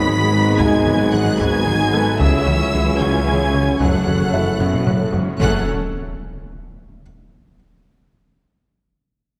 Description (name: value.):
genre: cinematic, hybrid orchestral and electronic film score.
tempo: 75 BPM (dotted quarters).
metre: 6/8.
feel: straight.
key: F# dorian.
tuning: A4 = 441 Hz.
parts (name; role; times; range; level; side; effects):
warm symphonic violin section; melody; 0.0-5.7 s; E6 to B6; -29 LUFS; equal; none.
rich symphonic violin section; second line; 0.0-5.7 s; E5 to B5; -29 LUFS; equal; none.
warm symphonic viola section; accompaniment; 0.0-5.7 s; G#3 to B4; -29 LUFS; equal; none.
mellow French horn section; sustained chords; 0.0-5.6 s; E3 to D#4; -26 LUFS; equal; none.
warm analog pad; sustained chords; 0.0-5.7 s; F#3 to D#5; -28 LUFS; equal; chorus.
mellow tuba; bass; 0.0-5.6 s; F#1 to C#2; -26 LUFS; equal; none.
warm symphonic cello section; bass; 0.0-5.7 s; C#2 to B2; -28 LUFS; equal; none.
warm symphonic double bass section; bass; 0.0-5.7 s; F#1 to C#2; -26 LUFS; equal; none.
warm concert grand piano; texture; 0.0-5.4 s; E4 to E5; -34 LUFS; equal; digital delay.
glassy wavetable pluck; arpeggios; 0.1-5.0 s; C#3 to G#4; -32 LUFS; equal; none.
rubbery square bass; riff; 0.1-5.3 s; C#2 to G#3; -27 LUFS; equal; none.
taiko ensemble; drums; 0.1-5.4 s; none; -26 LUFS; equal; none.
impact; sound effects; 5.4-7.0 s; none; -29 LUFS; equal; none.
room: moderate scoring stage reverb, RT60 1.8 s.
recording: none.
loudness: -17 LUFS.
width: mono.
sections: 0.0-5.4 A section; 5.4-7.0 B section.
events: drum fill 4.6-5.4; impact 5.4-7.0.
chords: 0.0 G#m; 2.2 C#m; 3.8 F#m.